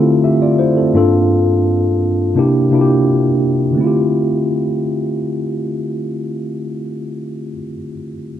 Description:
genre	soul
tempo	84 BPM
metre	4/4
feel	straight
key	D minor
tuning	A4 = 440 Hz
part	mellow tine electric piano	accompaniment	0.0-8.4 s	G2 to E5	-14 LUFS	equal	slow stereo tremolo
room	moderate plate reverb, RT60 3.5 s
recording	dark, warm production, lossy compression artefacts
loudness	-13 LUFS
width	side -10 dB against mid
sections	0.0-3.8 A section; 3.8-6.6 B section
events	none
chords	0.0 Dm11; 0.9 Gm9; 2.4 C9; 3.8 Dm11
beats	0.23 | 0.94 1.66 2.37 3.08 | 3.79 4.51 5.22 5.93

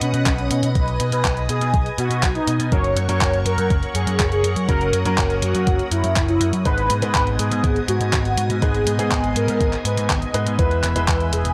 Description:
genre	italo disco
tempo	122 BPM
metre	4/4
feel	straight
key	G# minor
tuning	A4 = 441 Hz
part	mellow synth brass	melody	0.0-11.5 s	C#4 to D#5	-26 LUFS	equal	chorus, phaser, vintage 12-bit sampler grit, analog delay
part	string machine, full ensemble	sustained chords	0.0-11.5 s	B3 to E6	-31 LUFS	equal	ensemble chorus
part	overdriven picked electric bass	bass	0.0-11.5 s	E1 to B2	-24 LUFS	equal	none
part	clean 12-bit digital drum machine	drums	0.0-11.5 s	handclaps, hi-hat	-28 LUFS	equal	none
part	electronic kick drum	drums	0.3-11.2 s	none	-24 LUFS	equal	none
part	clear grand piano	stabs	2.7-11.5 s	G#2 to B4	-31 LUFS	equal	none
room	little or no reverb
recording	dry, gritty hardware recording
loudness	-20 LUFS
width	mono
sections	0.0-11.5 A section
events	none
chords	0.0 B; 2.7 F#; 6.7 G#m; 10.6 E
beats	0.26 | 0.75 1.25 1.74 2.23 | 2.72 3.21 3.70 4.20 | 4.69 5.18 5.67 6.16 | 6.66 7.15 7.64 8.13 | 8.62 9.11 9.61 10.10 | 10.59 11.08

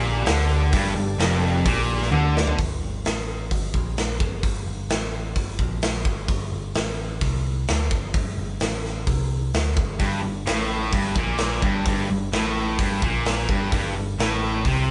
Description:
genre	hard rock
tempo	129 BPM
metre	4/4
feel	straight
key	G minor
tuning	A4 = 440 Hz
part	tonewheel organ	sustained chords	0.0-2.5 s	G3 to A4	-36 LUFS	equal	slow rotary speaker
part	distorted electric guitar	riff	0.0-2.6, 10.0-14.9 s	F2 to D3	-29 LUFS	equal	overdrive
part	sludgy distorted guitar	riff	0.0-2.6, 10.0-14.9 s	F2 to D3	-29 LUFS	equal	overdrive
part	picked electric bass	bass	0.0-14.9 s	F1 to D2	-29 LUFS	equal	none
part	big rock drum kit	drums	0.3-14.8 s	hi-hat, kick drum, snare drum, toms	-27 LUFS	equal	none
room	moderate studio reverb, RT60 0.7 s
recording	band playing live in one room, nothing above 10.8 kHz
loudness	-24 LUFS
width	mono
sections	0.0-2.6 A section; 2.6-14.9 B section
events	drum fill 2.1-2.6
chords	0.0 Gm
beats	0.27 | 0.73 1.19 1.65 2.12 | 2.58 3.04 3.51 3.97 | 4.43 4.90 5.36 5.83 | 6.29 6.75 7.22 7.68 | 8.15 8.61 9.07 9.54 | 10.00 10.47 10.93 11.40 | 11.86 12.33 12.79 13.26 | 13.72 14.19 14.65

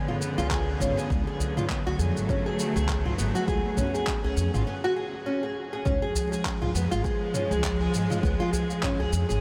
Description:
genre	organic downtempo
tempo	101 BPM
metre	4/4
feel	swing 58% on 16ths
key	C# phrygian dominant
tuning	A4 = 440 Hz
part	dark studio string section	sustained chords	0.0-9.4 s	D3 to C#4	-33 LUFS	equal	sidechain pumping
part	nylon-string guitar	arpeggios	0.0-9.4 s	B3 to G#4	-32 LUFS	equal	lush chorus, tape echo
part	deep house drum kit	drums	0.1-9.4 s	handclaps, shaker, toms	-36 LUFS	equal	none
part	upright bass	bass	0.4-9.4 s	G#1 to E#2	-31 LUFS	equal	none
part	electronic kick drum	drums	0.5-9.0 s	none	-33 LUFS	equal	none
part	udu	percussion	0.8-9.1 s	none	-35 LUFS	equal	none
room	moderate huge ambient reverb, RT60 8.6 s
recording	dreamy mix soaked in reverb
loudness	-27 LUFS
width	mono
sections	0.0-5.9 A section; 5.9-9.4 B section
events	break 4.7-5.9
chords	0.0 C#7b9; 1.1 Bm9; 5.9 C#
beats	0.51 | 1.10 1.70 2.29 2.89 | 3.48 4.08 4.67 5.26 | 5.86 6.45 7.04 7.64 | 8.23 8.83

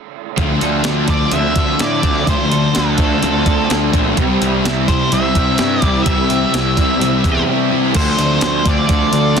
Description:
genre	rock, shoegaze and dream pop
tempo	127 BPM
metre	4/4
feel	straight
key	D minor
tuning	A4 = 440 Hz
part	direct-recorded clean electric guitar	arpeggios	0.4-9.4 s	F3 to A4	-25 LUFS	right 12 dB	lush chorus, slapback echo
part	overdriven electric guitar	riff	0.4-9.4 s	C3 to F4	-21 LUFS	right 14 dB	reverse reverb
part	thick fuzz guitar	riff	0.4-9.4 s	C3 to D4	-18 LUFS	left 12 dB	distortion, ensemble chorus
part	fuzz picked electric bass	bass	0.4-9.4 s	Bb1 to A2	-20 LUFS	right 1 dB	overdrive
part	clean 12-bit digital drum machine	drums	0.4-9.4 s	crash cymbal, hi-hat, kick drum, snare drum	-19 LUFS	equal	none
part	octave-fuzz lead guitar	melody	1.1-9.4 s	A4 to E5	-20 LUFS	equal	distortion, slapback echo
part	evolving wavetable pad	sustained chords	8.5-9.4 s	A4 to C6	-25 LUFS	right 3 dB	chorus, built-in reverb
room	digital ambience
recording	dense, heavily limited modern master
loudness	-13 LUFS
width	side -6 dB against mid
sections	0.4-8.0 A section; 8.0-9.4 B section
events	none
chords	0.4 Dm7; 4.2 C; 8.0 Dm7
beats	| 0.39 0.86 1.34 1.81 | 2.28 2.75 3.23 3.70 | 4.17 4.65 5.12 5.59 | 6.07 6.54 7.01 7.49 | 7.96 8.43 8.90 9.37

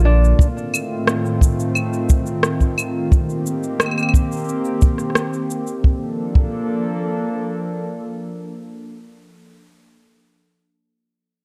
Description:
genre	folktronica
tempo	88 BPM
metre	4/4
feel	straight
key	Bb major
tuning	A4 = 439 Hz
part	warbly tape-like pad	sustained chords	0.0-9.3 s	A2 to A4	-25 LUFS	equal	chorus, built-in reverb
part	tenor ukulele	arpeggios	0.0-1.0 s	D4 to Bb4	-26 LUFS	equal	vintage 12-bit sampler grit, delay
part	electronic shaker, claves and rim click	drums	0.2-5.8 s	none	-24 LUFS	equal	none
part	kick drum	drums	0.4-6.6 s	none	-17 LUFS	equal	none
room	light reverb, small room ambience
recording	dark, warm production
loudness	-19 LUFS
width	mono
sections	0.0-5.8 A section; 5.8-8.6 B section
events	none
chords	0.4 F7/A; 3.1 Cm7; 5.8 Bbmaj7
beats	| 0.39 1.07 1.75 2.43 | 3.12 3.80 4.48 5.16 | 5.84 6.53 7.21 7.89

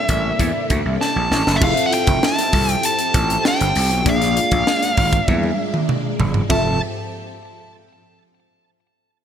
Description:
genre	polished 1980s jazz-funk pop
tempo	98 BPM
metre	4/4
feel	straight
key	F major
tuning	A4 = 440 Hz
part	nasal lead guitar with a parked wah	melody	0.0-6.8 s	E5 to A5	-21 LUFS	equal	overdrive
part	mellow tine electric piano	accompaniment	0.0-6.8 s	Bb3 to E5	-25 LUFS	left 2 dB	medium stereo tremolo, ensemble chorus
part	string machine, violins	sustained chords	0.0-6.8 s	C3 to E5	-28 LUFS	equal	ensemble chorus
part	gritty slap bass	bass	0.1-6.8 s	F1 to E2	-21 LUFS	equal	overdrive
part	crisp fusion drum kit	drums	0.1-6.6 s	crash cymbal, hi-hat, kick drum, snare drum, splash cymbal, toms	-21 LUFS	equal	gated reverb
room	moderate plate reverb, RT60 2.1 s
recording	bright 1980s-style digital production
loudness	-15 LUFS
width	side -9 dB against mid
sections	0.0-1.6 A section; 1.6-6.5 B section; 6.5-8.9 C section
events	drum fill 1.0-1.6, 5.3-6.5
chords	0.0 C13; 1.6 Fmaj7; 4.1 Bb7; 6.5 Fmaj7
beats	0.40 1.01 | 1.62 2.23 2.84 3.45 | 4.06 4.67 5.28 5.89 | 6.50

